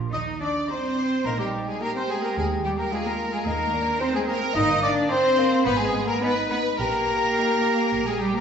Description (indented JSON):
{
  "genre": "quick classical-period movement for symphony orchestra",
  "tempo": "107 BPM",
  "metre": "4/4",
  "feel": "rubato",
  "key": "Eb major",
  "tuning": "A4 = 439 Hz",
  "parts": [
    { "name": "warm clarinet", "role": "second line", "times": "0.0-8.4 s", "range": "F4 to Eb5", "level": "-30 LUFS", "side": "equal", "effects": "none" },
    { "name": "clear studio violin section", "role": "second line", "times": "0.1-8.4 s", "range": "G4 to Eb5", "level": "-27 LUFS", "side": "left 1 dB", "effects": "none" },
    { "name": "concert flute", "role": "second line", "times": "0.1-8.4 s", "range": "G5 to Eb6", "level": "-29 LUFS", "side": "left 1 dB", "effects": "none" },
    { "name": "dark French horn section", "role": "sustained chords", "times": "0.1-8.4 s", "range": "G3 to Eb4", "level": "-30 LUFS", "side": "left 1 dB", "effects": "none" },
    { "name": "dark studio double bass section", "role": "bass", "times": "0.1-8.4 s", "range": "G1 to Eb2", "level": "-33 LUFS", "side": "right 2 dB", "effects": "none" },
    { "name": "rich studio cello section", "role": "bass", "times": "0.1-8.4 s", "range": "G3 to Eb4", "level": "-29 LUFS", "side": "right 2 dB", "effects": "none" },
    { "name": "rich studio violin section", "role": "melody", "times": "0.7-7.8 s", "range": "G5 to Bb5", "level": "-47 LUFS", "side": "left 3 dB", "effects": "none" },
    { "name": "rich studio viola section", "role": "accompaniment", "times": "0.7-7.8 s", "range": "F3 to Eb4", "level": "-44 LUFS", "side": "right 1 dB", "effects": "none" },
    { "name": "dark bassoon", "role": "accompaniment", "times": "1.3-8.4 s", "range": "Bb3 to G4", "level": "-30 LUFS", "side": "right 1 dB", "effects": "none" }
  ],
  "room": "wet recital hall reverb, RT60 1.5 s",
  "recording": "recorded in a church or concert hall, nothing above 7.7 kHz",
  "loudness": "-21 LUFS",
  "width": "side -7 dB against mid",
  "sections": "0.1-8.4 A section",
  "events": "none",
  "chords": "0.1 Eb; 2.4 Bb7/Eb; 3.5 Eb; 4.6 Eb/G; 5.7 Abm; 6.8 Eb/Bb"
}